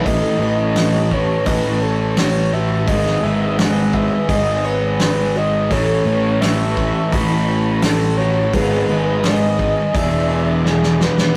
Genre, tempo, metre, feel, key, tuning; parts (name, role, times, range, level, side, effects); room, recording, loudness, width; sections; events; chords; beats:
rock, shoegaze and dream pop; 85 BPM; 4/4; straight; A4 = 440 Hz
breathy flute-like synth lead; melody; 0.0-11.4 s; G#4 to B5; -24 LUFS; equal; chorus
hollow soft pad; sustained chords; 0.1-11.3 s; E4 to D#6; -32 LUFS; equal; chorus
picked plugged-in twelve-string acoustic guitar; arpeggios; 0.0-11.4 s; F#4 to D#5; -30 LUFS; equal
overdriven semi-hollow guitar; riff; 0.0-11.4 s; G#2 to G#4; -26 LUFS; equal
thick fuzz guitar; riff; 0.0-11.3 s; E2 to A3; -24 LUFS; equal; distortion
fuzz picked electric bass; bass; 0.0-11.1 s; E1 to A1; -24 LUFS; equal; overdrive
loose indie drum kit; drums; 0.1-11.3 s; hi-hat, kick drum, snare drum; -24 LUFS; equal
wet stone room reverb, RT60 1.3 s; rough rehearsal-room recording, warm saturation; -17 LUFS; mono
0.1-11.4 A section
drum fill 10.6-11.4
0.1 Aadd9; 2.9 G#m; 5.7 Aadd9; 8.5 G#m; 9.9 E7
| 0.06 0.76 1.47 2.17 | 2.88 3.58 4.29 5.00 | 5.71 6.41 7.12 7.83 | 8.53 9.24 9.94 10.65 | 11.35